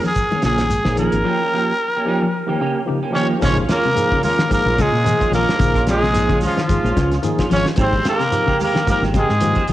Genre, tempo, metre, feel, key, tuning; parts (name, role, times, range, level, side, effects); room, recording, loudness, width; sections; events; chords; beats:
afrobeat; 110 BPM; 4/4; swing 56% on 16ths; Bb dorian; A4 = 442 Hz
tine electric piano; accompaniment; 0.0-9.6 s; F3 to Ab4; -26 LUFS; equal; overdrive, fast stereo tremolo, cassette tape
clean electric guitar; arpeggios; 0.0-9.7 s; C3 to F3; -25 LUFS; left 5 dB; spring reverb, cassette tape
semi-hollow electric guitar; stabs; 0.0-9.7 s; Eb3 to Ab4; -24 LUFS; right 4 dB; ensemble chorus, cassette tape
cloth-damped thuddy drum kit; drums; 0.0-9.7 s; hi-hat, kick drum, snare drum; -23 LUFS; equal; cassette tape
shekere; percussion; 0.0-9.7 s; -30 LUFS; right 1 dB
growling trumpet; melody; 0.1-9.7 s; F4 to Db5; -20 LUFS; equal; cassette tape, analog delay
congas; percussion; 0.1-9.7 s; -28 LUFS; left 2 dB
fingered electric bass; bass; 0.3-9.7 s; Ab1 to Bb2; -21 LUFS; equal
raspy tenor saxophone; second line; 3.1-9.7 s; F3 to Db4; -24 LUFS; right 1 dB; cassette tape, analog delay
moderate lush hall reverb, RT60 1.7 s; home recording on cassette; -15 LUFS; side -14 dB against mid
0.0-3.4 A section; 3.4-9.7 B section
0.0 Bbm7; 1.2 Eb9; 3.4 Bbm7; 7.8 Abmaj7
0.16 0.70 | 1.25 1.79 2.34 2.88 | 3.43 3.97 4.51 5.06 | 5.60 6.15 6.69 7.24 | 7.79 8.33 8.88 9.42